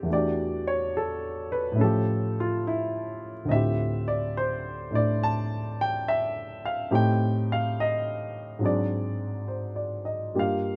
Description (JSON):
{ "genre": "jazz ballad", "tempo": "70 BPM", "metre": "4/4", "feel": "swing 67% on 8ths", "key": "unclear", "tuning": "A4 = 439 Hz", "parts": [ { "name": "warm baby grand piano", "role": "solo", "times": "0.0-10.8 s", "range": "D2 to A5", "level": "-27 LUFS", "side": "equal", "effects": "none" } ], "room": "little or no reverb", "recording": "close, detailed microphones", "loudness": "-27 LUFS", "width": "mono", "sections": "0.0-10.8 A section", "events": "none", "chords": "0.1 Em11; 1.8 A7b13; 3.5 Dm11; 6.9 Am7b5; 8.6 Ab7#11", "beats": "| 0.07 0.93 1.78 2.64 | 3.50 4.35 5.20 6.06 | 6.91 7.77 8.62 9.48 | 10.35" }